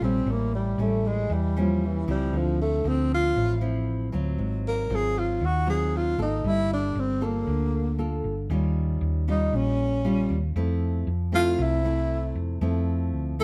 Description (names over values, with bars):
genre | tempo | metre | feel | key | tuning
bossa nova | 117 BPM | 4/4 | straight | F major | A4 = 439 Hz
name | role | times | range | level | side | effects
breathy tenor saxophone | melody | 0.0-13.4 s | E3 to Bb4 | -29 LUFS | equal | none
nylon-string guitar | accompaniment | 0.0-13.4 s | Ab2 to A4 | -32 LUFS | equal | none
hollow-body short-scale fingered electric bass | bass | 0.0-13.4 s | G1 to F2 | -29 LUFS | equal | none
room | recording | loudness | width
moderate stone room reverb, RT60 1.0 s | band playing live in one room | -26 LUFS | mono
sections
0.0-13.4 A section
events
tenor saxophone solo 0.0-13.4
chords
0.3 A7b9; 2.3 Dm9; 4.4 Ab13; 6.4 Gm9; 8.5 Eb9; 10.6 Fmaj7